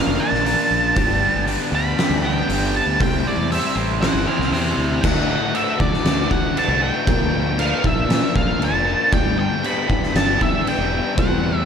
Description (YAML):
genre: quiet-loud alternative rock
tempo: 118 BPM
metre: 4/4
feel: straight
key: unclear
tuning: A4 = 440 Hz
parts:
  - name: octave-fuzz lead guitar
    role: melody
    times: 0.0-11.7 s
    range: D5 to B5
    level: -22 LUFS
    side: right 2 dB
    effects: distortion, tape echo
  - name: distorted electric guitar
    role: riff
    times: 0.0-5.0 s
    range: G2 to C5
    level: -26 LUFS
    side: right 9 dB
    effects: distortion, slapback echo
  - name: overdriven semi-hollow guitar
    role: riff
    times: 0.0-11.7 s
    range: D2 to C5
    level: -24 LUFS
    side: left 9 dB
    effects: slapback echo
  - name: growling fingered electric bass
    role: bass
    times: 0.1-11.7 s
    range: E1 to D3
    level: -24 LUFS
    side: equal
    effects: overdrive
  - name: oversized low-tuned drum kit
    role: drums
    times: 0.3-11.3 s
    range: crash cymbal, hi-hat, kick drum, snare drum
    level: -21 LUFS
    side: equal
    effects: none
room: moderate lush hall reverb, RT60 1.8 s, studio ambience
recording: big arena sound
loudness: -17 LUFS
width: side -7 dB against mid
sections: 0.0-5.0 A section; 5.0-11.7 B section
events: lead electric guitar solo 0.0-5.0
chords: 0.0 Bb; 1.0 G; 3.0 C; 5.0 D; 7.1 Bb; 9.1 G